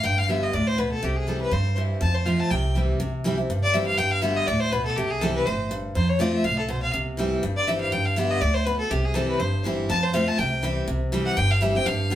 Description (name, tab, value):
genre	bluegrass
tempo	244 BPM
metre	4/4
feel	swing 54% on 8ths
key	C major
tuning	A4 = 438 Hz
part	clear fiddle	melody	0.0-12.2 s	G4 to A5	-25 LUFS	left 2 dB	none
part	picked steel-string acoustic guitar	accompaniment	0.0-12.2 s	F2 to G4	-25 LUFS	equal	none
part	upright bass	bass	0.0-12.2 s	G1 to G2	-27 LUFS	equal	none
room	wet studio reverb, RT60 0.6 s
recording	band playing live in one room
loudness	-21 LUFS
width	side -12 dB against mid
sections	0.0-3.0 A section; 3.0-10.9 A section; 10.9-12.2 B section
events	none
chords	0.0 G; 1.0 C; 2.0 F; 2.5 C; 4.0 G; 5.0 C; 6.0 F; 6.9 C; 7.9 G; 8.9 C; 9.9 F; 10.4 C